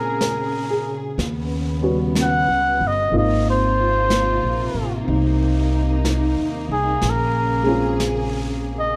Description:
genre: jazz ballad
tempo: 62 BPM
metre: 4/4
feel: swing 66% on 8ths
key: Ab major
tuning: A4 = 438 Hz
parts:
  - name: trumpet with cup mute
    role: melody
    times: 0.0-9.0 s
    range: Ab4 to F#5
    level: -23 LUFS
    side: equal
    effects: none
  - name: warm upright piano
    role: accompaniment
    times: 0.0-9.0 s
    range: G3 to Bb4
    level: -27 LUFS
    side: equal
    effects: none
  - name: warm studio string section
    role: sustained chords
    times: 0.0-9.0 s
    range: C3 to Ab4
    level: -29 LUFS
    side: equal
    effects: none
  - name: upright bass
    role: bass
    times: 0.0-8.9 s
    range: G1 to Bb2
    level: -25 LUFS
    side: equal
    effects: none
  - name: vintage brush drum kit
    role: drums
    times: 0.2-9.0 s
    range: brushed snare drum, hi-hat, snare drum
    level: -32 LUFS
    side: equal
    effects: none
room: light reverb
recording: none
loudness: -20 LUFS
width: mono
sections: 0.0-9.0 A section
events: muted trumpet solo 0.0-9.0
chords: 0.0 Bbm9; 1.2 Eb7alt; 3.1 Ab69; 7.0 Bbm7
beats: 0.20 1.17 2.15 | 3.12 4.10 5.07 6.05 | 7.03 8.00

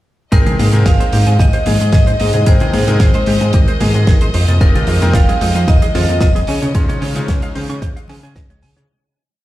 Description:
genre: nu-disco, nu disco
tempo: 112 BPM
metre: 4/4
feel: straight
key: Ab major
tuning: A4 = 445 Hz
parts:
  - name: vibraphone with hard mallets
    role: melody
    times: 0.3-8.1 s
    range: Bb4 to F5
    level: -22 LUFS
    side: right 1 dB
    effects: analog delay
  - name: bright electric grand piano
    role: accompaniment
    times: 0.3-8.9 s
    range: Ab3 to C6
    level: -24 LUFS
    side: left 2 dB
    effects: sidechain pumping, slapback echo
  - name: bright studio string section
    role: sustained chords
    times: 0.3-8.9 s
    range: Eb5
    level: -29 LUFS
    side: left 3 dB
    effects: sidechain pumping
  - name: wide unison pluck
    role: arpeggios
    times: 0.3-8.8 s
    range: F3 to Db4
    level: -26 LUFS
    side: left 2 dB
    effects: none
  - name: direct-recorded clean electric guitar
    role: riff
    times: 0.3-8.9 s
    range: Eb4 to Db6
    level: -27 LUFS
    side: right 3 dB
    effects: lush chorus, low-pass filter, slapback echo
  - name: fat analog bass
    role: bass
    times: 0.3-8.9 s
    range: F1 to Db3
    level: -15 LUFS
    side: equal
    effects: sidechain pumping
  - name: damped 70s drum kit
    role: drums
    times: 0.3-8.9 s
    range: hi-hat, snare drum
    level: -24 LUFS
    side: right 2 dB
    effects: none
  - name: electronic kick drum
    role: drums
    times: 0.3-8.5 s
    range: none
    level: -13 LUFS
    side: equal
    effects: none
  - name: congas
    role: percussion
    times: 0.5-8.9 s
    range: none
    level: -24 LUFS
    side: left 1 dB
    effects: none
room: studio ambience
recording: played on a big sound system in a bare room, stone room reverb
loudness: -11 LUFS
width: side -15 dB against mid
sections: 0.3-8.9 groove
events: fade-out 6.0-8.9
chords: 0.3 Abmaj9; 4.3 Fm11; 6.5 Dbmaj9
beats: | 0.32 0.86 1.40 1.93 | 2.47 3.00 3.54 4.07 | 4.61 5.14 5.68 6.22 | 6.75 7.29 7.82 8.36

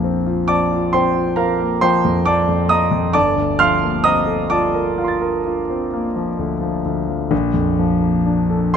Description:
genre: classical, impressionist solo piano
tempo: 41-46 BPM (dotted quarters)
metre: 9/8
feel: rubato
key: G minor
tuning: A4 = 440 Hz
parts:
  - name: warm concert grand piano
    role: solo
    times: 0.0-8.8 s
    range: G1 to A6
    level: -15 LUFS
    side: equal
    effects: none
room: moderate recital hall reverb, RT60 1.3 s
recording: close, detailed microphones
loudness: -15 LUFS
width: side -7 dB against mid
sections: 0.0-8.8 A section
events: none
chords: 0.0 Bbadd9; 3.1 Gm11; 7.3 Bbmaj7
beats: 0.48 1.83 | 3.14 4.52 5.94 | 7.31 8.76

